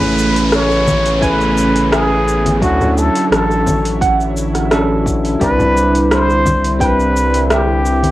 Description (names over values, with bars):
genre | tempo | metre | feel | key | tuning
sunset chillout | 86 BPM | 4/4 | straight | A major | A4 = 441 Hz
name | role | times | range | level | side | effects
trumpet with plunger mute | melody | 0.0-8.1 s | F#4 to C#5 | -17 LUFS | equal | cassette tape, tape echo
bell-like tine electric piano | accompaniment | 0.0-8.1 s | F#3 to D5 | -18 LUFS | equal | auto-pan, cassette tape
lush unison pad | sustained chords | 0.0-8.1 s | C#3 to G#5 | -22 LUFS | equal | chorus, cassette tape
soft round pluck | arpeggios | 0.0-7.7 s | F#4 to B5 | -23 LUFS | right 3 dB | chorus, cassette tape, tape echo
round analog bass | bass | 0.0-8.1 s | A1 to D2 | -18 LUFS | equal | none
deep house drum kit | drums | 0.0-8.1 s | hi-hat, rim click, shaker | -20 LUFS | equal | overdrive
congas | percussion | 0.0-8.1 s | none | -21 LUFS | left 1 dB | none
downlifter | sound effects | 0.0-5.4 s | none | -26 LUFS | equal | none
electronic kick drum | drums | 0.9-6.9 s | none | -21 LUFS | equal | overdrive
room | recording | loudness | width
wet booth ambience, RT60 0.2 s | home recording on cassette | -12 LUFS | side -15 dB against mid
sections
0.0-8.1 A section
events
none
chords
0.0 Amaj9; 2.6 Dmaj9; 5.4 Cmaj9